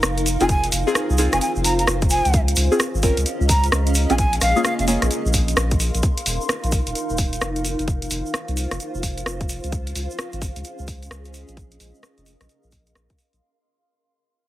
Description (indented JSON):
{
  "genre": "UK garage, two-step garage",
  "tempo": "130 BPM",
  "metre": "4/4",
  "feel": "swing 63% on 16ths",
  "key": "unclear",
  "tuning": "A4 = 440 Hz",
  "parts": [
    { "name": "saturated sub bass", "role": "bass", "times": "0.0-13.4 s", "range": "Eb1 to Db2", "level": "-23 LUFS", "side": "equal", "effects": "none" },
    { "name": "garage drum kit", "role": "drums", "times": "0.0-13.4 s", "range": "hi-hat, rim click", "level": "-24 LUFS", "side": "equal", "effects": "none" },
    { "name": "egg shaker", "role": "percussion", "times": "0.0-13.4 s", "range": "none", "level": "-30 LUFS", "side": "right 2 dB", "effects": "none" },
    { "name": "granular cloud pad", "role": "texture", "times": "0.0-13.4 s", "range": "Db4 to C6", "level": "-28 LUFS", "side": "right 1 dB", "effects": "built-in reverb, sidechain pumping" },
    { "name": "breathy jazz flute", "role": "melody", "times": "0.4-4.8 s", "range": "F5 to Bb5", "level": "-24 LUFS", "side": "equal", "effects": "dub echo" },
    { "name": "deep mellow chord stab", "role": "stabs", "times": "0.4-6.0 s", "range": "Bb3 to Bb4", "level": "-23 LUFS", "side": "left 1 dB", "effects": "chorus, phaser, dub echo" },
    { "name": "electronic kick drum", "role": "drums", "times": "0.5-13.2 s", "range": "none", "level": "-22 LUFS", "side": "equal", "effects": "none" }
  ],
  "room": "light reverb, digital ambience",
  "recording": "heavily compressed radio sound",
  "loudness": "-18 LUFS",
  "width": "side -14 dB against mid",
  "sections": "0.0-6.0 A section; 6.0-13.4 B section",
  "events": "drop 0.0-6.0; fade-out 6.0-13.4",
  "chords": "0.3 Fm7; 2.3 Dbmaj7; 4.2 Bbm7; 6.0 Eb5; 7.6 F5; 9.7 Dbmaj7; 11.6 Bbm7"
}